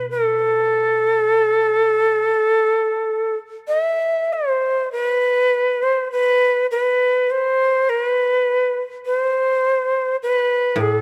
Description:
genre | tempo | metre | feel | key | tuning
japanese traditional, Japanese chamber music | 51 BPM | 4/4 | rubato | unclear | A4 = 440 Hz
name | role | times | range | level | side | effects
breathy bright shakuhachi | melody | 0.0-11.0 s | A4 to E5 | -19 LUFS | equal | none
koto | accompaniment | 0.0-2.3, 10.8-11.0 s | A2 to B2 | -31 LUFS | equal | none
room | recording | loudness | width
light reverb | none | -19 LUFS | mono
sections
0.0-4.9 A section; 4.9-11.0 B section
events
none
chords
none

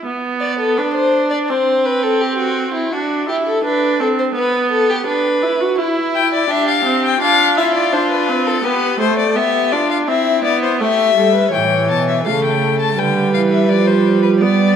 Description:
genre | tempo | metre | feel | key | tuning
classical, baroque-style fugue for string quartet | 84 BPM | 4/4 | straight | unclear | A4 = 440 Hz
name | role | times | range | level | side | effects
rich viola | accompaniment | 0.0-14.8 s | E3 to F#4 | -18 LUFS | right 3 dB | none
dark violin | second line | 0.4-14.8 s | E4 to D5 | -19 LUFS | left 2 dB | none
warm violin | melody | 6.2-14.8 s | A4 to A5 | -17 LUFS | left 8 dB | none
warm cello | bass | 11.5-14.8 s | A2 to G3 | -18 LUFS | right 5 dB | none
room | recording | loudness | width
wet concert hall reverb, RT60 1.9 s | none | -13 LUFS | side -8 dB against mid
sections
0.0-11.5 A section; 11.5-14.8 B section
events
none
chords
0.1 Bm; 1.5 N.C.; 2.9 D; 4.4 G/B (rootless); 5.8 C/E; 8.6 G; 10.1 C; 11.5 A7; 13.0 Dm

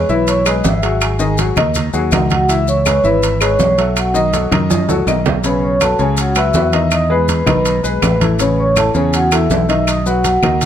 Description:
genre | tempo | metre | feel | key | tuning
latin, salsa | 162 BPM | 4/4 | straight | unclear | A4 = 440 Hz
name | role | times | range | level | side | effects
vibraphone with soft mallets | melody | 0.0-10.7 s | F#4 to E6 | -17 LUFS | right 1 dB | slapback echo
clear upright piano | accompaniment | 0.0-10.7 s | C#3 to E5 | -18 LUFS | left 3 dB | none
modern bright fingered electric bass | bass | 0.0-10.7 s | G#1 to F#2 | -18 LUFS | equal | none
congas | percussion | 0.1-10.7 s | none | -21 LUFS | left 1 dB | none
maracas | percussion | 0.1-10.7 s | none | -27 LUFS | left 6 dB | none
timbales | percussion | 0.3-10.7 s | none | -22 LUFS | right 9 dB | none
claves | percussion | 0.5-10.6 s | none | -26 LUFS | left 6 dB | none
room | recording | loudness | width
light reverb | close, detailed microphones | -12 LUFS | side -9 dB against mid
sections
0.0-5.4 A section; 5.4-10.7 B section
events
drum fill 4.7-5.4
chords
0.0 E; 1.0 G#5; 2.5 C#m7; 4.0 B7; 5.4 Bsus2; 6.9 Emaj7; 8.4 Aadd9; 9.9 B

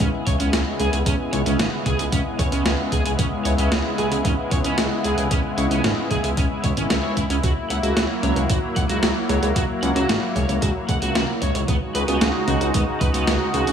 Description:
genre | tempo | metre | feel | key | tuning
synthwave | 113 BPM | 4/4 | straight | C# dorian | A4 = 441 Hz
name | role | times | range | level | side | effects
warm analog pad | sustained chords | 0.0-13.7 s | C#3 to F#4 | -24 LUFS | left 1 dB | chorus, sidechain pumping
crunchy overdriven guitar | riff | 0.0-13.7 s | B3 to F#5 | -27 LUFS | right 2 dB | ensemble chorus, digital delay
chorused synth bass | bass | 0.0-13.7 s | G#1 to C#2 | -23 LUFS | right 1 dB | sidechain pumping
electronic kick drum | drums | 0.0-13.1 s | none | -24 LUFS | equal | none
gated 80s digital drum machine | drums | 0.0-13.7 s | hi-hat, snare drum, toms | -25 LUFS | equal | gated reverb, gated reverb snare
room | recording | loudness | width
light reverb | small room ambience | -19 LUFS | side -8 dB against mid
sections
0.0-13.7 A section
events
none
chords
0.0 C#m7; 7.4 F#7; 11.7 B6

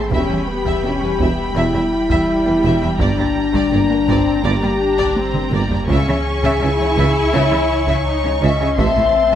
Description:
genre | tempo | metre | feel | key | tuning
cinematic, hybrid orchestral and electronic film score | 83 BPM | 4/4 | straight | unclear | A4 = 440 Hz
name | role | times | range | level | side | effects
warm symphonic violin section | melody | 0.0-9.4 s | Bb5 to C#6 | -28 LUFS | left 1 dB | none
dark symphonic violin section | second line | 0.0-9.4 s | Bb4 to A5 | -25 LUFS | left 1 dB | none
warm symphonic viola section | accompaniment | 0.0-9.4 s | G3 to E4 | -24 LUFS | right 1 dB | none
dark French horn section | sustained chords | 0.0-9.4 s | D4 to E5 | -19 LUFS | left 4 dB | none
mallet-like synth pluck | arpeggios | 0.0-9.4 s | C#3 to G4 | -29 LUFS | left 1 dB | none
warm sub bass | bass | 0.0-9.4 s | E1 to C#2 | -25 LUFS | right 1 dB | none
mellow tuba | bass | 0.1-8.9 s | E1 to C#2 | -25 LUFS | right 3 dB | none
rich symphonic cello section | bass | 0.1-9.4 s | E2 to C#3 | -24 LUFS | right 2 dB | none
rich symphonic double bass section | bass | 0.1-8.9 s | E1 to C#2 | -24 LUFS | right 3 dB | none
taiko ensemble | drums | 0.1-9.4 s | none | -24 LUFS | right 1 dB | none
room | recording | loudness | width
moderate scoring stage reverb, RT60 2.0 s | none | -14 LUFS | side -10 dB against mid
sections
0.0-9.4 A section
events
drum fill 5.2-5.9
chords
0.1 Em; 3.0 Gm; 5.9 C#m; 8.8 Am

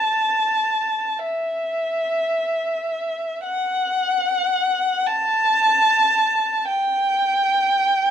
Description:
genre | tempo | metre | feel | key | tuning
classical, free, expressive piece for unaccompanied violin | 22-40 BPM (dotted quarters) | 6/8 | rubato | unclear | A4 = 441 Hz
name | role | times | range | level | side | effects
dark violin | solo | 0.0-8.1 s | E5 to A5 | -18 LUFS | equal | none
room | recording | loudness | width
moderate large studio reverb, RT60 1.3 s | dark, warm production | -18 LUFS | side -9 dB against mid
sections
0.0-3.5 A section; 3.5-8.1 B section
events
none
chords
none

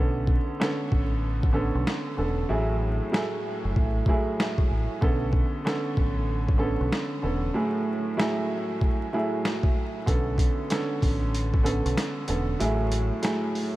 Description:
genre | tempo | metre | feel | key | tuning
hip hop, boom-bap hip-hop | 95 BPM | 4/4 | swing 62% on 16ths | B dorian | A4 = 440 Hz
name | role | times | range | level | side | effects
warm upright piano | accompaniment | 0.0-13.8 s | A2 to A4 | -27 LUFS | right 2 dB | cassette tape, high-pass filter, low-pass filter
deep dub fingered electric bass | bass | 0.0-13.1 s | E1 to B1 | -28 LUFS | equal | none
boom bap sampler-style drum kit | drums | 0.3-13.7 s | hi-hat, kick drum, snare drum | -27 LUFS | equal | none
room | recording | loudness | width
light reverb, digital ambience | vinyl crackle | -23 LUFS | side -16 dB against mid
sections
0.0-13.8 A section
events
break 0.0-10.1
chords
0.0 Bm9; 2.5 F#m9; 5.0 Bm9; 7.5 F#m9/A; 10.1 Bm9; 12.6 F#m9

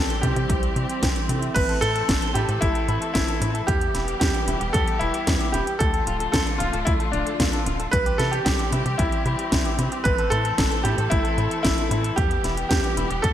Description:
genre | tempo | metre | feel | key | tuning
italo disco | 113 BPM | 4/4 | straight | A minor | A4 = 440 Hz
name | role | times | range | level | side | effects
bright grand piano | melody | 0.0-13.3 s | D4 to B4 | -26 LUFS | equal | digital delay
clear studio string section | sustained chords | 0.0-13.3 s | D3 to A4 | -30 LUFS | equal | none
tight sequencer bass | bass | 0.0-13.3 s | D1 to C3 | -26 LUFS | equal | none
house drum kit | drums | 0.1-13.3 s | crash cymbal, hi-hat, snare drum | -27 LUFS | equal | overdrive, gated reverb
mellow synth brass | stabs | 0.2-1.8 s | G3 to E5 | -33 LUFS | right 4 dB | chorus, digital delay
electronic kick drum | drums | 0.2-13.3 s | none | -26 LUFS | equal | overdrive
electric guitar with an envelope filter | arpeggios | 1.6-13.3 s | G3 to A4 | -33 LUFS | left 3 dB | lush chorus, digital delay
room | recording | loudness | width
light reverb | bright 1980s-style digital production | -20 LUFS | side -11 dB against mid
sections
0.0-13.3 A section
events
none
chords
0.0 C; 1.6 Am; 3.7 Em; 5.8 Dm; 7.9 C; 10.1 Am; 12.2 Em

